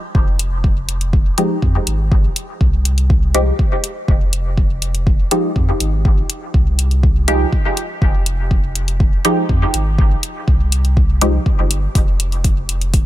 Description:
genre	dub techno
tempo	122 BPM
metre	4/4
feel	straight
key	F minor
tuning	A4 = 440 Hz
part	warm sub bass	bass	0.1-13.1 s	F1 to F2	-18 LUFS	equal	sidechain pumping
part	electronic kick drum	drums	0.1-13.0 s	none	-14 LUFS	equal	none
part	electronic hi-hat	drums	0.4-13.0 s	none	-20 LUFS	left 2 dB	none
part	filtered dub chord stab	stabs	1.4-11.4 s	F3 to G4	-22 LUFS	equal	chorus, phaser, sidechain pumping, dub echo
room	digital ambience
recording	none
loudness	-14 LUFS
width	side -14 dB against mid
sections	0.0-13.1 A section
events	none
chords	0.0 Fm

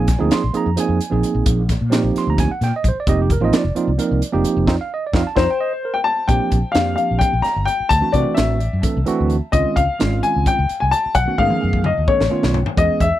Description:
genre	electric jazz fusion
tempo	260 BPM (eighths)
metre	7/8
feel	straight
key	unclear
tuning	A4 = 441 Hz
part	tine electric piano	accompaniment	0.0-13.1 s	Eb3 to C6	-21 LUFS	right 5 dB	none
part	fretless electric bass	bass	0.0-13.1 s	F1 to C3	-20 LUFS	equal	ensemble chorus
part	crisp fusion drum kit	drums	0.1-13.1 s	hi-hat, kick drum, snare drum, toms	-20 LUFS	equal	none
part	warm baby grand piano	melody	5.4-13.2 s	C5 to Bb5	-19 LUFS	left 4 dB	none
room	little or no reverb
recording	none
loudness	-16 LUFS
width	side -13 dB against mid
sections	0.0-6.3 A section; 6.3-13.2 B section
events	band accent 4.7-6.3; drum fill 5.6-6.3, 11.4-12.8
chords	0.0 Bb9sus4; 3.1 F9sus4; 6.3 Bb69; 7.9 D9; 9.5 Dbmaj9; 11.2 B9

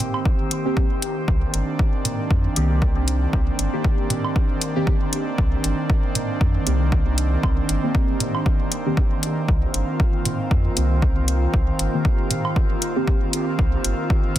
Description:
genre	dub techno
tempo	117 BPM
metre	4/4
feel	swing 56% on 16ths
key	C minor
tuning	A4 = 441 Hz
part	airy breathy pad	sustained chords	0.0-14.4 s	Eb3 to G4	-26 LUFS	right 1 dB	chorus, sidechain pumping
part	electronic hi-hat	drums	0.0-14.4 s	none	-24 LUFS	left 2 dB	overdrive
part	electronic toms and woodblock	percussion	0.0-14.4 s	none	-30 LUFS	right 2 dB	sidechain pumping on toms, sidechain pumping on perc, dub echo
part	drifting glass-harmonics texture	texture	0.0-14.4 s	Eb3 to C5	-33 LUFS	right 5 dB	chorus, built-in reverb, sidechain pumping
part	electronic kick drum	drums	0.3-14.2 s	none	-20 LUFS	equal	none
part	deep mellow chord stab	stabs	0.7-13.1 s	Eb3 to G4	-28 LUFS	equal	chorus, phaser, sidechain pumping, dub echo
part	soft dub sub bass	bass	1.3-13.9 s	G1 to F2	-22 LUFS	equal	tube saturation, sidechain pumping
room	light reverb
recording	dense, heavily limited modern master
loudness	-19 LUFS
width	side -13 dB against mid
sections	0.0-14.4 A section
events	none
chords	0.0 Cm7

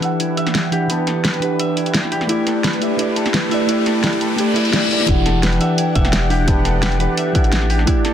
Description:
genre	liquid drum and bass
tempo	172 BPM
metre	4/4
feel	straight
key	E minor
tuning	A4 = 444 Hz
part	mellow FM electric piano	accompaniment	0.0-8.1 s	E3 to A5	-19 LUFS	equal	chorus, phaser, low-pass filter, digital delay
part	lush unison pad	sustained chords	0.0-8.1 s	E3 to F#5	-25 LUFS	left 1 dB	chorus, phaser
part	concert harp	arpeggios	0.0-8.1 s	B3 to E5	-25 LUFS	right 1 dB	low-pass filter, digital delay
part	pop drum kit	drums	0.0-8.1 s	hi-hat, snare drum	-21 LUFS	equal	none
part	riser and reverse cymbal	sound effects	1.9-5.1 s	none	-26 LUFS	left 2 dB	none
part	saturated sub bass	bass	5.1-7.9 s	E1 to A1	-19 LUFS	equal	none
part	electronic kick drum	drums	5.1-7.9 s	none	-17 LUFS	equal	none
room	moderate digital room reverb, RT60 1.0 s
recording	dense, heavily limited modern master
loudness	-15 LUFS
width	side -9 dB against mid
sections	0.0-5.1 A section; 5.1-8.1 B section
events	build-up 0.0-5.1; filter sweep on analog synth pad 0.0-5.1; filter sweep on harp 0.0-5.1; riser 1.9-5.1; reverse cymbal 4.4-5.1; drop 5.1-8.1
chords	0.0 Em9; 2.3 A7sus4; 5.1 Em9

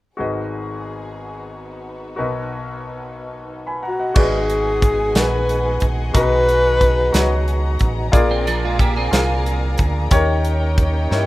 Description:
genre	slow gospel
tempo	60 BPM (dotted quarters)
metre	6/8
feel	straight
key	G# minor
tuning	A4 = 444 Hz
part	clear grand piano	accompaniment	0.2-11.3 s	G#1 to B5	-24 LUFS	left 2 dB	none
part	dark studio string section	sustained chords	0.2-11.3 s	F#4 to A#5	-30 LUFS	left 1 dB	none
part	breathy alto saxophone	melody	3.9-7.4 s	F#4 to B4	-18 LUFS	left 1 dB	none
part	tonewheel organ	sustained chords	4.2-11.3 s	D#3 to G#4	-29 LUFS	right 3 dB	slow rotary speaker, chorus vibrato
part	fingered electric bass	bass	4.2-11.3 s	G#1 to G2	-20 LUFS	equal	none
part	modern studio drum kit	drums	4.2-11.3 s	crash cymbal, hi-hat, kick drum, snare drum	-18 LUFS	equal	none
part	clean electric guitar	second line	8.3-9.9 s	E#3 to G#4	-25 LUFS	right 6 dB	ensemble chorus
room	small room reverb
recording	rough home demo mix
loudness	-16 LUFS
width	side -17 dB against mid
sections	0.2-4.2 A section; 4.2-11.3 B section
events	none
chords	0.2 G#m7; 2.2 Bmaj7; 4.2 G#m7; 6.2 Bmaj7; 8.1 A#7; 10.1 D#7

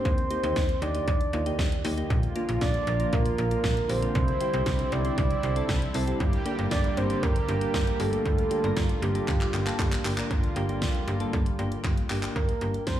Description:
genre	synth-pop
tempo	117 BPM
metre	4/4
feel	straight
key	G minor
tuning	A4 = 438 Hz
part	soft octave-layered synth lead	melody	0.0-13.0 s	G4 to D5	-30 LUFS	right 3 dB	chorus, tape echo
part	soft electric-piano-like synth keys	accompaniment	0.0-12.8 s	Bb3 to Bb4	-33 LUFS	left 2 dB	chorus
part	slap-like FM bass	bass	0.1-13.0 s	G1 to Eb2	-29 LUFS	equal	none
part	pop drum kit	drums	0.1-13.0 s	handclaps, hi-hat, kick drum, snare drum	-28 LUFS	equal	none
part	brassy analog pad	sustained chords	2.1-12.3 s	D3 to G4	-33 LUFS	equal	chorus
room	moderate lush hall reverb, RT60 1.9 s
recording	dreamy mix soaked in reverb, small room reverb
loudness	-24 LUFS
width	side -11 dB against mid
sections	0.0-10.3 A section; 10.3-12.4 B section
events	drum fill 9.3-10.3, 11.8-12.4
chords	0.1 Eb; 2.1 Bb; 4.2 Cadd9; 6.2 Gm; 8.3 Gm7; 12.4 Gm

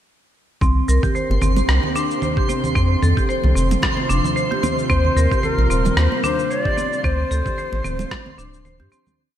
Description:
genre	organic downtempo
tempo	112 BPM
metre	4/4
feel	swing 56% on 16ths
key	C dorian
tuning	A4 = 439 Hz
part	ethereal airy pad	sustained chords	1.3-9.2 s	C3 to G4	-28 LUFS	equal	ensemble chorus, built-in reverb, sidechain pumping, shimmer reverb
part	marimba with hard mallets	arpeggios	0.6-9.2 s	C4 to C5	-24 LUFS	equal	low-pass filter, digital delay, shimmer reverb
part	round analog bass	bass	0.6-8.9 s	D1 to G2	-18 LUFS	equal	sidechain pumping
part	electronic congas, cabasa and rim click	drums	0.6-9.2 s	none	-26 LUFS	right 3 dB	overdrive, small room ambience, gated reverb
part	electronic kick drum	drums	0.6-8.2 s	none	-22 LUFS	equal	overdrive, small room ambience
part	twinkling granular texture	texture	0.9-9.2 s	C5	-28 LUFS	right 2 dB	built-in reverb, wide subtle chorus, shimmer reverb
part	congas	percussion	1.3-9.2 s	none	-28 LUFS	right 3 dB	none
part	Native American-style cedar flute	melody	4.9-8.7 s	Bb4 to D5	-24 LUFS	left 2 dB	digital delay, shimmer reverb
room	light reverb, studio reverb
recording	bright 1980s-style digital production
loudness	-16 LUFS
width	side -11 dB against mid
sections	0.6-9.2 groove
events	filter sweep on marimba 0.6-9.2; fade-out 6.3-9.2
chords	0.6 Cm9; 2.8 F7; 4.9 Eb69; 7.0 Dm7

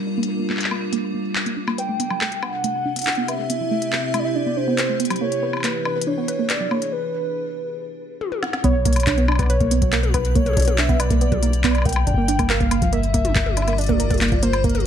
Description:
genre	IDM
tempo	140 BPM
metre	4/4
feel	straight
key	unclear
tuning	A4 = 440 Hz
part	icy glass pad	sustained chords	0.0-14.9 s	B2 to B4	-29 LUFS	right 1 dB	chorus, built-in reverb
part	warbly dusty pluck	arpeggios	0.0-14.7 s	F3 to B4	-24 LUFS	right 4 dB	chorus, cassette tape, ping-pong delay
part	organic electronic drum kit	drums	0.2-14.8 s	handclaps, hi-hat, snare drum, toms, woodblock	-25 LUFS	left 3 dB	low-pass filter on hats, low-pass filter on perc, low-pass filter on snare, low-pass filter on toms, low-pass filter on room
part	warbly nostalgic lead	melody	1.8-14.8 s	Bb4 to G5	-25 LUFS	equal	chorus, tremolo, ping-pong delay
part	round analog bass	bass	8.6-14.9 s	G1 to B1	-21 LUFS	left 1 dB	tube saturation
part	electronic kick drum	drums	8.6-14.7 s	none	-23 LUFS	left 1 dB	none
room	light reverb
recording	none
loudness	-18 LUFS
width	side -9 dB against mid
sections	0.0-8.6 A section; 8.6-14.9 B section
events	filter sweep on synth pluck 0.0-8.6; break 6.9-8.6; drum fill 8.2-8.6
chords	0.0 Gm7; 1.8 Cmaj7; 5.2 E7; 8.6 Bmadd9; 12.1 Gm7

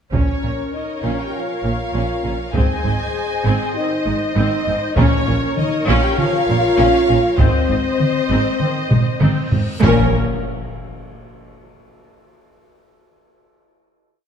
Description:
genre	cinematic, epic orchestral film score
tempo	99 BPM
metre	4/4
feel	straight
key	Bb minor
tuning	A4 = 439 Hz
part	rich studio violin section	melody	0.1-10.2 s	Db5 to Eb5	-28 LUFS	left 4 dB	none
part	warm symphonic violin section	second line	0.1-10.2 s	Bb4 to Ab5	-24 LUFS	left 2 dB	none
part	rich symphonic viola section	accompaniment	0.1-10.2 s	Ab3 to C5	-25 LUFS	right 2 dB	none
part	dark French horn section	sustained chords	0.1-10.1 s	C4 to Bb4	-22 LUFS	left 1 dB	none
part	warm trombone section	sustained chords	0.1-10.1 s	Eb3 to Db4	-31 LUFS	right 2 dB	none
part	rich studio double bass section	bass	0.1-10.2 s	Ab1 to Bb1	-23 LUFS	right 2 dB	none
part	warm symphonic cello section	bass	0.1-10.2 s	Ab2 to Bb2	-24 LUFS	right 3 dB	none
part	taiko ensemble	drums	0.1-10.0 s	none	-19 LUFS	equal	none
part	timpani	percussion	5.0-5.8, 9.8-10.1 s	Bb2	-23 LUFS	left 5 dB	none
part	reverse cymbal and impact	sound effects	9.6-12.3 s	none	-29 LUFS	left 1 dB	none
room	moderate scoring stage reverb, RT60 2.0 s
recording	dark, warm production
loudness	-15 LUFS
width	side -8 dB against mid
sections	0.1-9.8 theme; 9.8-12.3 final chord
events	drum fill 8.9-9.8; reverse cymbal 9.6; impact 9.8-12.3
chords	0.1 Bbm; 2.5 Ab; 5.0 Bbm; 7.4 Ab; 9.8 Bbm

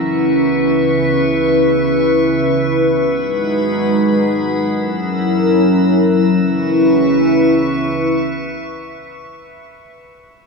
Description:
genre	hip hop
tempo	free time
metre	none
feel	none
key	C# dorian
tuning	A4 = 439 Hz
part	dark analog pad	sustained chords	0.0-9.4 s	C#3 to B4	-13 LUFS	equal	chorus, low-pass filter
part	drifting glass-harmonics texture	texture	0.0-9.4 s	G#4 to E6	-23 LUFS	left 1 dB	chorus, built-in reverb
room	light reverb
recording	dry, gritty hardware recording, studio ambience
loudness	-12 LUFS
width	side -3 dB against mid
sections	0.0-6.4 A section; 6.4-9.7 B section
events	filter sweep on analog synth pad 0.0-6.4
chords	0.0 C#m7; 3.0 G#m7; 4.7 F#7; 6.4 C#m7

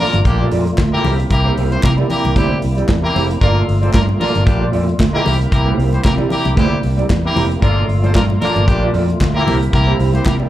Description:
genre	disco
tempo	114 BPM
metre	4/4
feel	swing 56% on 16ths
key	unclear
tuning	A4 = 441 Hz
part	mellow electric guitar	accompaniment	0.0-10.5 s	Bb3 to E5	-22 LUFS	right 5 dB	lush chorus, plate reverb, slapback echo
part	percussive tonewheel organ	sustained chords	0.0-10.5 s	Bb2 to F4	-23 LUFS	right 1 dB	overdrive, chorus vibrato, slow rotary speaker, plate reverb
part	clear horn section	stabs	0.0-10.3 s	G3 to C5	-20 LUFS	left 1 dB	plate reverb, slapback echo
part	fingered electric bass	bass	0.1-10.5 s	F1 to C3	-16 LUFS	equal	none
part	modern studio drum kit	drums	0.1-10.4 s	hi-hat, kick drum, snare drum	-17 LUFS	equal	none
part	congas	percussion	0.1-10.5 s	none	-25 LUFS	left 4 dB	none
part	group handclap	percussion	0.8-10.4 s	none	-30 LUFS	left 2 dB	none
room	light reverb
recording	live gig heard through the venue's PA, club reverb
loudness	-13 LUFS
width	side -13 dB against mid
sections	0.0-10.5 A section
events	none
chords	0.0 Gm9; 1.0 C7; 3.4 Gm9; 5.3 C7; 7.6 Gm9; 9.5 C7

